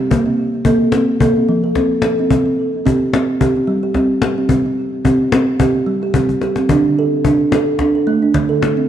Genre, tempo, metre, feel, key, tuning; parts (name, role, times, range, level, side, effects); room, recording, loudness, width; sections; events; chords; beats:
world meditative, meditative tuned percussion; 109 BPM; 4/4; swing 54% on 16ths; D minor; A4 = 440 Hz
kalimba; arpeggios; 0.0-8.9 s; D3 to A4; -14 LUFS; right 2 dB; diffuse ambient delay
cajon; percussion; 0.1-8.8 s; -19 LUFS; left 4 dB
wet recital hall reverb, RT60 1.7 s, studio ambience; dark, warm production; -13 LUFS; side -10 dB against mid
0.0-6.7 A section; 6.7-8.9 B section
drum fill 6.3-6.7
0.1 Bb5; 2.3 C5; 6.7 D5
| 0.09 0.64 1.20 1.75 | 2.30 2.85 3.40 3.95 | 4.50 5.05 5.60 6.14 | 6.70 7.24 7.79 8.34